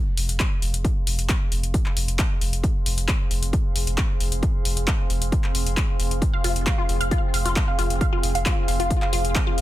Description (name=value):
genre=driving peak-time techno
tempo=134 BPM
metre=4/4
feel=straight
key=F minor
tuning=A4 = 440 Hz
part: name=warbly tape-like pad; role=texture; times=0.2-9.6 s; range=C4 to C6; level=-32 LUFS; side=right 2 dB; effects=chorus, built-in reverb, sidechain pumping
part: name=saturated sub bass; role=bass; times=0.2-9.6 s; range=F1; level=-25 LUFS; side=equal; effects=sidechain pumping, low-pass filter
part: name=punchy analog drum machine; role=drums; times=0.2-9.6 s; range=handclaps, hi-hat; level=-28 LUFS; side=left 2 dB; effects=overdrive, sidechain pumping on hats, sidechain pumping on cymbals
part: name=electronic kick drum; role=drums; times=0.4-9.4 s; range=none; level=-23 LUFS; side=equal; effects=none
part: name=resonant blip pluck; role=riff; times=6.3-9.5 s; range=F4 to F5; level=-27 LUFS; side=left 2 dB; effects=phaser, overdrive, sidechain pumping, tape echo
room=digital ambience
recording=dense, heavily limited modern master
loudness=-20 LUFS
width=side -15 dB against mid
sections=0.0-9.6 A section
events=fade-in on ambient pad 0.0-9.6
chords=0.0 Fm